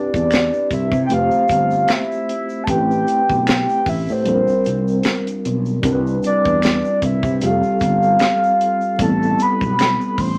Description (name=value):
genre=R&B, neo-soul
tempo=76 BPM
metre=4/4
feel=swing 57% on 16ths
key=unclear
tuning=A4 = 440 Hz
part: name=soft octave-layered synth lead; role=melody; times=0.0-10.4 s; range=C5 to C6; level=-21 LUFS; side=equal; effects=chorus, phaser
part: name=mellow tine electric piano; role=accompaniment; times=0.0-10.4 s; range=G3 to C5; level=-23 LUFS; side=equal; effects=none
part: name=sustaining fretless electric bass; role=bass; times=0.1-10.4 s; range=F1 to C3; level=-24 LUFS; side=equal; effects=none
part: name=tight funk drum kit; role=drums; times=0.1-10.4 s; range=hi-hat, kick drum, snare drum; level=-25 LUFS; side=equal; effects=none
part: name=egg shaker and finger snaps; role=percussion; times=0.1-10.4 s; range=none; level=-35 LUFS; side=equal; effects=none
room=moderate club reverb, RT60 0.7 s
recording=vinyl crackle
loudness=-18 LUFS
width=mono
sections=0.0-10.4 A section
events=none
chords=0.0 Cmaj9; 1.1 Fmaj9; 2.7 Am9; 4.3 Bb69; 5.8 Cmaj9; 7.4 Fadd9; 9.0 Am9